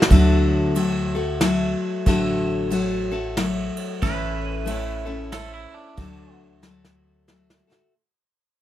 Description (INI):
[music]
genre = honky-tonk and classic country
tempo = 92 BPM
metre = 3/4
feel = swing 61% on 8ths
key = D major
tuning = A4 = 440 Hz
[part]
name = picked steel-string acoustic guitar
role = accompaniment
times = 0.0-7.9 s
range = A2 to A4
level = -22 LUFS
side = left 2 dB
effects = none
[part]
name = soft brush drum kit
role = drums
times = 0.0-7.9 s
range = kick drum, ride cymbal, snare drum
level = -26 LUFS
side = right 1 dB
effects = none
[part]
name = upright bass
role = bass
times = 0.1-7.6 s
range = A1 to D2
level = -25 LUFS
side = right 1 dB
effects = none
[part]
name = twangy electric guitar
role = second line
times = 4.0-6.4 s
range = D4 to B4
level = -36 LUFS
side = right 7 dB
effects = tape echo
[sound]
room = light reverb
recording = close, detailed microphones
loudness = -20 LUFS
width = side -13 dB against mid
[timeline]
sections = 0.1-7.9 A section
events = fade-out 0.1-7.9; drum fill 6.6-7.9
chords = 0.1 D; 4.0 A; 6.0 D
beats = | 0.10 0.75 1.41 | 2.06 2.71 3.36 | 4.01 4.67 5.32 | 5.97 6.62 7.27